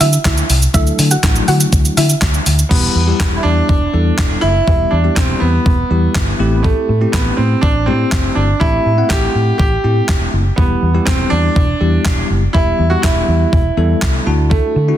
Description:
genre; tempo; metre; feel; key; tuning
dance-pop; 122 BPM; 4/4; straight; E minor; A4 = 440 Hz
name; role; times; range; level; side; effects
soft round pluck; melody; 0.0-2.2 s; E4 to F#5; -20 LUFS; equal; chorus, tape echo
bell-like tine electric piano; accompaniment; 0.0-15.0 s; F#3 to A5; -21 LUFS; left 3 dB; fast stereo tremolo, sidechain pumping
vintage muted fingered electric bass; bass; 0.0-14.9 s; E1 to D3; -15 LUFS; equal; sidechain pumping
crisp 8-bit digital drum machine; drums; 0.0-14.6 s; crash cymbal, handclaps, hi-hat, kick drum, shaker, snare drum; -16 LUFS; equal; none
clear concert grand piano; melody; 2.7-15.0 s; A3 to G4; -18 LUFS; right 2 dB; tape echo
room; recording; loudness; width
little or no reverb; dense, heavily limited modern master; -11 LUFS; side -11 dB against mid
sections
0.0-2.7 A section; 2.7-15.0 B section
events
drop 0.0-2.7; tine electric piano fill 13.8-14.5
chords
0.0 Dadd9; 2.7 Em; 6.4 Am7; 10.6 Em; 14.3 Dadd9

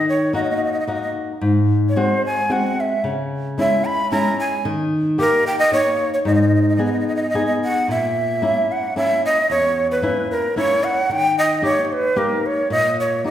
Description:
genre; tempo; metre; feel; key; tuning
italian folk, Italian serenade; 112 BPM; 3/4; straight; unclear; A4 = 440 Hz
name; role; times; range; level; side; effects
breathy bright shakuhachi; melody; 0.0-13.3 s; A#4 to B5; -19 LUFS; right 1 dB; none
flamenco guitar; accompaniment; 0.0-13.3 s; E2 to G#4; -20 LUFS; left 1 dB; none
room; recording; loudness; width
wet recital hall reverb, RT60 1.4 s; heard from further back in the room; -17 LUFS; side -11 dB against mid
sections
0.0-7.9 A section; 7.9-13.3 B section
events
none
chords
0.0 D#m; 1.4 G#7; 3.0 C#m; 4.7 D#; 6.3 G#m; 7.9 A#dim; 11.1 D#

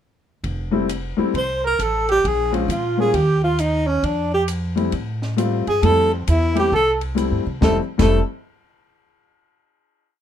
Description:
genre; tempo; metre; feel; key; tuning
jazz, small-group swing and bop; 134 BPM; 4/4; swing 65% on 8ths; F major; A4 = 440 Hz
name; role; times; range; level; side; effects
upright bass; bass; 0.4-8.2 s; F1 to C3; -22 LUFS; equal; none
compact cocktail drum kit; drums; 0.4-8.1 s; crash cymbal, hi-hat, kick drum, ride cymbal, snare drum; -30 LUFS; equal; none
warm upright piano; accompaniment; 0.7-8.2 s; G3 to F4; -21 LUFS; left 5 dB; none
breathy alto saxophone; melody; 1.4-8.2 s; C4 to C5; -20 LUFS; equal; none
mellow trumpet; second line; 1.4-8.2 s; A3 to C5; -25 LUFS; right 4 dB; none
room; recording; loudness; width
light reverb; minimal, uncompressed stereo recording; -17 LUFS; side -10 dB against mid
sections
0.4-7.6 A section; 7.6-9.4 final chord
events
none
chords
0.4 Fmaj9; 2.2 Bbm7; 3.1 Eb9; 4.0 Fmaj9

